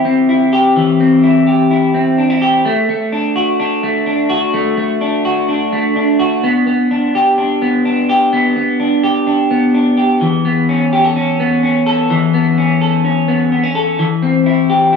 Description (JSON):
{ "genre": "indie pop", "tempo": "127 BPM", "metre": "4/4", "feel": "straight", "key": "unclear", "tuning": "A4 = 440 Hz", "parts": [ { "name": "electric guitar through a small old amp", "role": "solo", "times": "0.0-15.0 s", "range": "E3 to A4", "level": "-11 LUFS", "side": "left 1 dB", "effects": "lush chorus" } ], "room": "moderate studio reverb, RT60 0.6 s", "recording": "studio reverb", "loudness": "-11 LUFS", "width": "side -6 dB against mid", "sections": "0.0-15.0 A section", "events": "none", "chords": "0.0 C; 2.6 D; 6.4 G/B; 10.2 Aadd9; 14.0 C" }